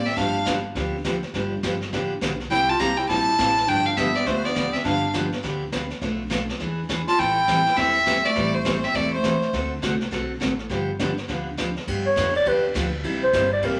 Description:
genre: country, western swing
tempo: 205 BPM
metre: 4/4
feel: swing 62% on 8ths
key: G mixolydian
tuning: A4 = 440 Hz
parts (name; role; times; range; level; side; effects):
- clear fiddle; melody; 0.0-0.5, 2.5-9.7 s; C5 to Bb5; -24 LUFS; equal; none
- breathy clarinet; second line; 0.0-0.5, 2.5-9.7, 12.1-13.8 s; A3 to D5; -27 LUFS; equal; none
- upright bass; bass; 0.0-13.8 s; E1 to G2; -35 LUFS; equal; none
- jazz brush drum kit; drums; 0.1-13.7 s; brushed snare drum, hi-hat, kick drum, ride cymbal, snare drum; -32 LUFS; equal; none
- picked steel-string acoustic guitar; accompaniment; 0.2-13.8 s; B2 to A4; -30 LUFS; equal; none
room: wet large studio reverb, RT60 0.8 s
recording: none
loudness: -23 LUFS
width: mono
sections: 0.0-11.9 A section; 11.9-13.8 B section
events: clarinet solo 11.9-13.8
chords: 0.2 G7; 2.5 C7; 3.7 G7; 6.0 Bm7b5; 6.6 E7; 7.2 Am7; 9.5 D7; 10.7 G7; 13.0 C7

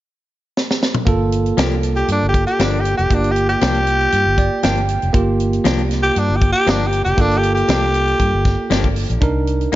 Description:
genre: straight-eighth soul blues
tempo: 118 BPM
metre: 4/4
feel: swing 53% on 16ths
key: G minor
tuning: A4 = 440 Hz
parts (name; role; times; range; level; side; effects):
- tight funk drum kit; drums; 0.6-9.8 s; hi-hat, kick drum, snare drum, toms; -20 LUFS; equal; none
- bell-like tine electric piano; accompaniment; 1.1-9.8 s; Bb3 to G5; -22 LUFS; right 4 dB; none
- vintage muted fingered electric bass; bass; 1.1-9.8 s; F1 to G2; -20 LUFS; equal; none
- clean electric guitar; stabs; 1.6-9.8 s; F3 to G4; -25 LUFS; left 6 dB; spring reverb
- growling tenor saxophone; melody; 2.0-9.0 s; D4 to G4; -18 LUFS; left 1 dB; none
room: light reverb, studio ambience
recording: nothing above 7.5 kHz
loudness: -14 LUFS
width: side -15 dB against mid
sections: 0.0-1.1 A section; 1.1-9.8 B section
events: drum fill 0.6-1.1; tine electric piano fill 4.1-5.1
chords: 0.0 N.C.; 1.1 Gm7; 9.2 Cm7

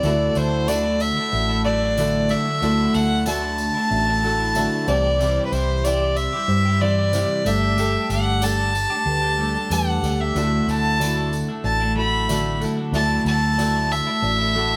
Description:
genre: folk rock and heartland rock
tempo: 93 BPM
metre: 4/4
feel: straight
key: D mixolydian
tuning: A4 = 440 Hz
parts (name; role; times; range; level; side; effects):
- warm fiddle; melody; 0.0-14.8 s; B4 to B5; -24 LUFS; equal; tape echo
- dark upright piano; accompaniment; 0.0-14.7 s; E4 to E5; -37 LUFS; equal; none
- picked plugged-in steel-string acoustic guitar; accompaniment; 0.0-14.8 s; C3 to C5; -30 LUFS; equal; none
- twelve-string electric guitar; riff; 0.0-14.8 s; C3 to G4; -28 LUFS; equal; phaser
- hollow-body short-scale fingered electric bass; bass; 0.0-14.8 s; G1 to G2; -26 LUFS; equal; none
- tambourine; percussion; 0.0-14.6 s; none; -39 LUFS; equal; none
room: moderate stone room reverb, RT60 1.1 s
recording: band playing live in one room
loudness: -21 LUFS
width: mono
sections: 0.0-14.8 A section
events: none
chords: 0.0 Dadd9; 4.9 C; 7.5 Gsus2; 10.4 Dadd9

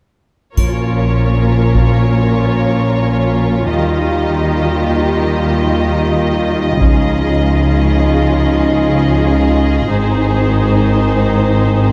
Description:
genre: cinematic, epic orchestral film score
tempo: free time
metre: none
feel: none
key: Bb dorian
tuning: A4 = 438 Hz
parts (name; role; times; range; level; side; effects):
- warm symphonic violin section; melody; 0.6-11.9 s; C5 to Eb5; -25 LUFS; equal; none
- warm symphonic violin section; second line; 0.6-11.9 s; G4 to Bb4; -27 LUFS; equal; none
- rich symphonic viola section; accompaniment; 0.6-11.9 s; Eb4 to F4; -25 LUFS; equal; none
- warm French horn section; sustained chords; 0.6-11.9 s; Eb3 to F4; -20 LUFS; equal; none
- rich symphonic cello section; bass; 0.6-11.9 s; Ab2 to Eb3; -20 LUFS; equal; none
- rich symphonic double bass section; bass; 0.6-11.9 s; Ab1 to Eb2; -18 LUFS; equal; none
- taiko ensemble; drums; 0.6-2.0, 6.8-7.8 s; none; -17 LUFS; equal; none
- triangle; percussion; 0.6-1.6 s; none; -35 LUFS; equal; none
room: moderate recital hall reverb, RT60 1.7 s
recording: dark, warm production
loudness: -14 LUFS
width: mono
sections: 0.6-11.9 A section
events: build-up 0.6-11.9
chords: 0.6 Bbm; 3.7 Ebadd9; 6.8 Dbadd9; 9.9 Ab

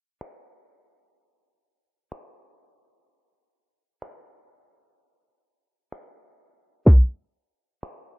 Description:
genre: R&B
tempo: 63 BPM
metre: 4/4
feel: swing 58% on 16ths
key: none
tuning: none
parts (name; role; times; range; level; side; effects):
- trap drum kit; drums; 0.2-8.1 s; finger snaps, kick drum; -14 LUFS; equal; none
room: little or no reverb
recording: dark, warm production, low-pass filter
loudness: -16 LUFS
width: side -33 dB against mid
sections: 0.0-8.2 A section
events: filter sweep 0.0-8.2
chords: none

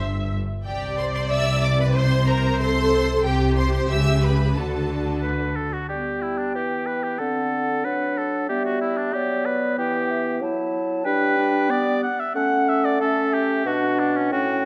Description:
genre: quick classical-period movement for symphony orchestra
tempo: 92 BPM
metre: 2/4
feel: straight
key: C major, G major from 3.3 s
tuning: A4 = 440 Hz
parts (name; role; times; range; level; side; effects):
- rich studio viola section; accompaniment; 0.0-5.5 s; F#4 to E5; -28 LUFS; equal; none
- rich studio double bass section; bass; 0.0-5.7 s; G1 to D2; -27 LUFS; equal; none
- warm studio cello section; bass; 0.0-5.7 s; G2 to D3; -27 LUFS; equal; none
- rich studio violin section; melody; 0.7-5.2 s; G5 to E6; -32 LUFS; equal; none
- rich studio violin section; second line; 0.7-5.2 s; G4 to E5; -32 LUFS; equal; none
- clear oboe; second line; 5.2-14.7 s; C#4 to F#5; -27 LUFS; equal; none
- clear clarinet; second line; 5.9-14.7 s; B3 to E4; -29 LUFS; equal; none
- mellow hollow silver concert flute; second line; 5.9-14.7 s; D5 to A5; -31 LUFS; equal; none
- mellow bassoon; accompaniment; 5.9-14.7 s; A2 to A3; -28 LUFS; equal; none
room: moderate scoring stage reverb, RT60 1.5 s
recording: none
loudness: -22 LUFS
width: mono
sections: 0.0-5.9 A section; 5.9-14.7 B section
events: none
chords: 0.0 C/G (rootless); 0.7 C5; 3.9 C#m7b5; 4.6 D; 5.9 G; 7.2 D7; 8.5 G; 9.8 Em; 11.1 G; 12.4 A; 13.7 Bm

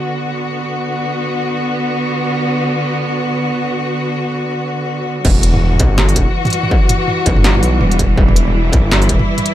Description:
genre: half-time drum and bass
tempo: 164 BPM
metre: 4/4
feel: swing 57% on 16ths, half-time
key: E minor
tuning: A4 = 440 Hz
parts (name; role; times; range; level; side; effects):
- clear studio cello section; sustained chords; 0.0-9.5 s; D3 to F#4; -17 LUFS; equal; sidechain pumping
- dark detuned saw bass; bass; 5.2-9.2 s; E1 to B1; -14 LUFS; equal; none
- electronic kick drum; drums; 5.2-9.2 s; none; -15 LUFS; equal; distortion
- industrial drum kit; drums; 5.2-9.5 s; crash cymbal, hi-hat, snare drum, toms; -18 LUFS; right 1 dB; none
room: little or no reverb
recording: none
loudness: -13 LUFS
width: side -13 dB against mid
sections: 0.0-5.3 A section; 5.3-9.5 B section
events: drop 5.3-9.5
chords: 0.0 D6; 5.3 Emadd9

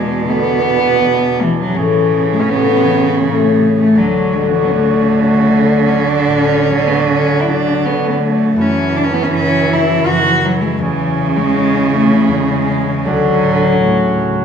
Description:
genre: celtic folk, Celtic slow air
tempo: 80 BPM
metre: 3/4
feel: rubato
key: unclear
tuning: A4 = 440 Hz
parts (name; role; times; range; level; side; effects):
- warm cello; melody; 0.0-14.4 s; E3 to F#4; -15 LUFS; left 1 dB; none
- warm cello; second line; 0.0-14.4 s; A2 to E3; -17 LUFS; right 5 dB; none
- concert harp; accompaniment; 0.0-14.4 s; D2 to F#3; -18 LUFS; left 7 dB; none
- mellow accordion; sustained chords; 0.0-14.4 s; A2 to C#5; -22 LUFS; right 4 dB; none
room: wet recital hall reverb, RT60 1.4 s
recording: minimal, uncompressed stereo recording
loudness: -11 LUFS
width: side -7 dB against mid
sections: 0.0-14.4 A section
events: none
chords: 0.0 E7; 1.8 Amaj7; 4.0 Dmaj7; 8.6 F#m7; 10.8 E6; 13.1 Dmaj7

